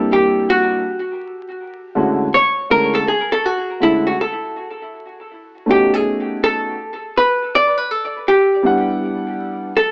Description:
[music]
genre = hip hop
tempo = 81 BPM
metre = 4/4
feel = swing 63% on 16ths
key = B minor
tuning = A4 = 440 Hz
[part]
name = archtop guitar, miked and amplified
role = melody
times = 0.0-9.9 s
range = E4 to D5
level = -18 LUFS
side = equal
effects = plate reverb, tape echo
[part]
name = dark concert grand piano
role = accompaniment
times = 0.0-9.7 s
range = D3 to F#5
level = -22 LUFS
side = equal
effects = none
[sound]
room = wet small room ambience, RT60 0.5 s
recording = vinyl crackle, AM radio sound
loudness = -17 LUFS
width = mono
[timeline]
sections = 0.0-9.9 A section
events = hollow-body jazz guitar solo 0.0-9.9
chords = 0.0 C9; 1.6 Dmaj7sus2; 4.6 B7; 7.5 Em7

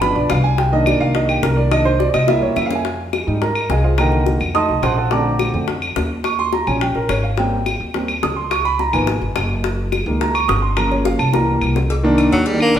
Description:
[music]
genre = Afro-Cuban jazz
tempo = 212 BPM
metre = 4/4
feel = straight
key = F minor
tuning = A4 = 441 Hz
[part]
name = warm concert grand piano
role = accompaniment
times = 0.0-12.8 s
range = Db3 to Eb6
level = -18 LUFS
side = right 2 dB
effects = none
[part]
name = upright bass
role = bass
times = 0.0-12.8 s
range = Gb1 to Ab2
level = -20 LUFS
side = equal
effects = none
[part]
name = bongos and cowbell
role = percussion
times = 0.0-12.8 s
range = none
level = -24 LUFS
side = left 5 dB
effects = none
[part]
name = claves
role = percussion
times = 0.3-12.7 s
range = none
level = -26 LUFS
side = left 1 dB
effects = none
[part]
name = edgy tenor saxophone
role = melody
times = 12.3-12.8 s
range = F#3 to D4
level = -16 LUFS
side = equal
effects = none
[sound]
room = wet stone room reverb, RT60 1.3 s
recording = band playing live in one room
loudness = -15 LUFS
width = side -10 dB against mid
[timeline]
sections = 0.0-2.8 A section; 2.8-11.9 A section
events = grand piano solo 0.0-11.9; drum fill 2.1-2.8, 11.1-11.9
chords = 0.0 G7; 0.6 Cm7; 2.3 C7; 2.8 Fm7; 4.0 Cm9; 4.5 F7b9; 5.1 Bbmaj9; 6.2 Eb7; 7.4 Abmaj7; 8.5 Db13; 9.6 Gb6; 10.8 Gm7b5; 11.3 C7; 11.9 Cm7

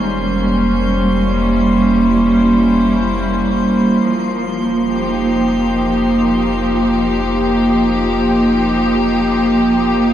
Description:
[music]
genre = ambient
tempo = free time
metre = none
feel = none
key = unclear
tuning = A4 = 441 Hz
[part]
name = clear studio string section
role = sustained chords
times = 0.0-10.1 s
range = F3 to G4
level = -13 LUFS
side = equal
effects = low-pass filter
[part]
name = warm sub bass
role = bass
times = 0.0-10.1 s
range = F1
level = -24 LUFS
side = equal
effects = none
[part]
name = drifting glass-harmonics texture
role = texture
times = 0.0-10.1 s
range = C5 to C6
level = -25 LUFS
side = left 2 dB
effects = chorus, built-in reverb
[sound]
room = wet cathedral reverb, RT60 5.9 s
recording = dark, warm production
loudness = -12 LUFS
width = side -11 dB against mid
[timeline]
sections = 0.0-10.1 A section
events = fade-out on sub bass 0.0-10.1; filter sweep on string section 0.0-10.1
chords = 0.0 C7b9/F; 4.0 F5

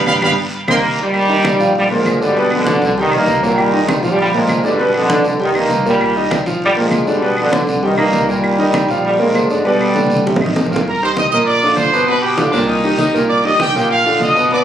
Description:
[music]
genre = latin, salsa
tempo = 198 BPM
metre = 4/4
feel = straight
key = C minor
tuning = A4 = 440 Hz
[part]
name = upright bass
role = bass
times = 0.0-14.6 s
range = G1 to C2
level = -26 LUFS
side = equal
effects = none
[part]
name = bright trumpet section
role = melody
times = 0.1-0.8, 10.9-14.6 s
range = G4 to Eb6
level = -15 LUFS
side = right 1 dB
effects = tape echo
[part]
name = bright concert grand piano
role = accompaniment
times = 0.1-14.6 s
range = Bb2 to G5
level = -17 LUFS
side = equal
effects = none
[part]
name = claves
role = percussion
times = 0.1-10.6 s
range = none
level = -24 LUFS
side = right 1 dB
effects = none
[part]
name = congas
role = percussion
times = 0.1-14.6 s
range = none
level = -21 LUFS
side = equal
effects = none
[part]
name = guiro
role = percussion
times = 0.1-14.6 s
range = none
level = -29 LUFS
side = right 1 dB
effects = none
[part]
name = bright trombone section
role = melody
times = 0.7-10.8 s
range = Eb2 to Bb3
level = -15 LUFS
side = equal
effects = none
[part]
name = bright saxophone section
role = second line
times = 12.5-13.2 s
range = D4 to Eb4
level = -19 LUFS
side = left 1 dB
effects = none
[sound]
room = moderate studio ambience, RT60 0.5 s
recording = recorded on a phone in the room, club reverb, compression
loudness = -12 LUFS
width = side -10 dB against mid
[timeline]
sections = 0.0-1.1 A section; 1.1-10.9 B section; 10.9-14.6 A section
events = band accent 0.0-1.1; drum fill 10.0-10.9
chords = 0.0 G7; 0.5 Cm7; 1.1 Ebadd9/Bb; 1.8 Bb7; 2.4 G7; 3.0 Cm7; 4.2 Bb7; 4.8 G7; 5.4 Cm7; 6.6 Bb7; 7.2 G7; 7.8 Cm7; 9.0 Bb7; 9.6 G; 10.3 Cm7; 11.5 G7; 12.7 Cm7; 13.9 Bb

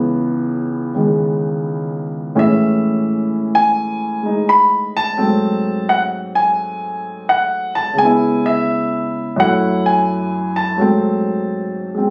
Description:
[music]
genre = solo jazz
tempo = 85 BPM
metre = 4/4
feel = swing 66% on 8ths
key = C# minor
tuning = A4 = 440 Hz
[part]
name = warm baby grand piano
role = solo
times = 0.0-12.1 s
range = C#2 to B5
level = -17 LUFS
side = equal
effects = none
[sound]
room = light reverb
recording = recorded on a phone in the room, studio reverb, compression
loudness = -17 LUFS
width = mono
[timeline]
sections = 0.0-12.1 A section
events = none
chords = 0.0 C#m7; 2.4 Amaj7; 5.2 G#7b9; 8.0 C#m7; 9.4 F#m7; 10.8 G#7b9

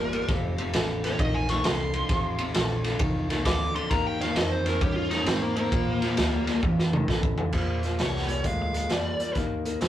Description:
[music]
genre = electric blues shuffle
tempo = 132 BPM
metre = 4/4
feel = swing 66% on 8ths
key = Bb mixolydian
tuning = A4 = 440 Hz
[part]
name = dark smooth lead guitar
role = melody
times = 0.0-9.4 s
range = Bb3 to D6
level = -30 LUFS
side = equal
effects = overdrive
[part]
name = electric guitar through a small old amp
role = riff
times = 0.0-9.9 s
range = F2 to Db4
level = -30 LUFS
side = left 2 dB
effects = none
[part]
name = upright bass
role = bass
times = 0.0-9.9 s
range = F1 to Bb2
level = -32 LUFS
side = equal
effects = none
[part]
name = raw garage drum kit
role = drums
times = 0.1-9.9 s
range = crash cymbal, hi-hat, kick drum, ride cymbal, snare drum, toms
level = -27 LUFS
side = right 1 dB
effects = none
[sound]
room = moderate studio reverb, RT60 0.5 s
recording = rough rehearsal-room recording, warm saturation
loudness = -24 LUFS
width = side -12 dB against mid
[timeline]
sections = 0.0-7.5 A section; 7.5-9.9 B section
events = lead electric guitar solo 0.0-7.5; drum fill 6.6-7.5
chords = 0.3 F7; 3.9 Eb7; 5.7 Bb; 6.6 F7; 7.5 Bb7; 9.4 Eb5

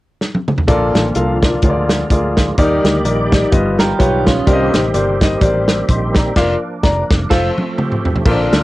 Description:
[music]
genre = uptempo gospel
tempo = 127 BPM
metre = 4/4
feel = swing 57% on 8ths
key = Bb major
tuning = A4 = 440 Hz
[part]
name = warm soul drum kit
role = drums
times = 0.2-8.6 s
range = crash cymbal, hi-hat, kick drum, snare drum, toms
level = -15 LUFS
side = equal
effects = cassette tape
[part]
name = warm concert grand piano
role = accompaniment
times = 0.7-8.6 s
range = G2 to C6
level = -16 LUFS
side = left 2 dB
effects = cassette tape
[part]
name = bright tonewheel organ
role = sustained chords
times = 0.7-8.6 s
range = D3 to D5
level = -22 LUFS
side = right 2 dB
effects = slow rotary speaker, overdrive, chorus vibrato, cassette tape
[part]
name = fingered electric bass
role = bass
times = 0.7-8.6 s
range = F1 to Eb2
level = -19 LUFS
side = equal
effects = none
[part]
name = clean electric guitar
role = second line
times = 3.8-7.5 s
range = Db4 to Bb4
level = -20 LUFS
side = right 5 dB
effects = cassette tape
[sound]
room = light reverb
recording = home recording on cassette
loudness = -12 LUFS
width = side -18 dB against mid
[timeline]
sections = 0.7-8.3 A section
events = drum fill 0.2-0.7, 7.3-8.3; band accent 6.4-8.3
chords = 0.0 N.C.; 0.7 Bbmaj7; 1.6 Bb7/D; 2.6 Ebmaj7; 3.5 Gaug7; 4.5 Cm7; 6.4 Bb/F; 7.3 F

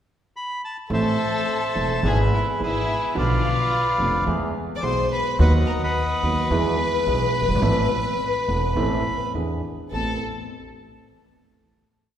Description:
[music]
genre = tango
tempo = 107 BPM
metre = 4/4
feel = rubato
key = A harmonic minor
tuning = A4 = 440 Hz
[part]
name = bandoneon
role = melody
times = 0.4-10.2 s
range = G#4 to D6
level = -25 LUFS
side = equal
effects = none
[part]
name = warm studio violin section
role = second line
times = 0.9-10.2 s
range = E4 to D5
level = -28 LUFS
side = left 3 dB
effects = none
[part]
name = warm grand piano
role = accompaniment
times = 0.9-10.2 s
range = E1 to A4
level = -26 LUFS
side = right 2 dB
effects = none
[part]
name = upright bass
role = bass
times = 0.9-10.2 s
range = E1 to E2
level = -24 LUFS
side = equal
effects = none
[sound]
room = wet concert hall reverb, RT60 2.0 s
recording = recorded in a church or concert hall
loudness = -20 LUFS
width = side -10 dB against mid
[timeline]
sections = 0.0-0.9 pickup bar; 0.9-9.9 A section; 9.9-12.2 final chord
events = none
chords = 0.0 N.C.; 0.9 Am; 2.0 E/G#; 3.2 Bdim; 4.3 E; 5.4 B/D#; 6.5 E; 7.6 Amadd9; 9.3 E7; 9.9 Amadd9

